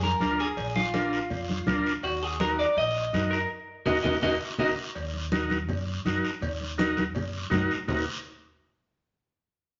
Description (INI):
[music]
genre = latin, cumbia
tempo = 164 BPM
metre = 4/4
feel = straight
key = Eb harmonic minor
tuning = A4 = 441 Hz
[part]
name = clean electric guitar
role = melody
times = 0.0-4.7 s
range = F4 to Eb5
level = -30 LUFS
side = equal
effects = spring reverb
[part]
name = upright bass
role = bass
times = 0.0-8.0 s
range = Bb1 to Gb2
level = -37 LUFS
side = equal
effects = none
[part]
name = congas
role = percussion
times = 0.0-8.0 s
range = none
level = -34 LUFS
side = equal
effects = none
[part]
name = combo organ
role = accompaniment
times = 0.2-8.1 s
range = D4 to Bb4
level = -32 LUFS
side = equal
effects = none
[part]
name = cowbell and timbales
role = percussion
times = 0.2-8.0 s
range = none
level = -41 LUFS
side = equal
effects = none
[part]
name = guiro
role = percussion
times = 0.2-8.0 s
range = none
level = -42 LUFS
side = equal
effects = none
[sound]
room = wet studio reverb, RT60 0.9 s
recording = nothing above 7.5 kHz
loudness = -28 LUFS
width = mono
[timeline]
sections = 0.0-5.0 A section; 5.0-7.9 B section; 7.9-9.3 C section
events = band accent 3.5-5.0; drum fill 4.2-5.0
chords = 0.0 Bb; 2.0 Ebm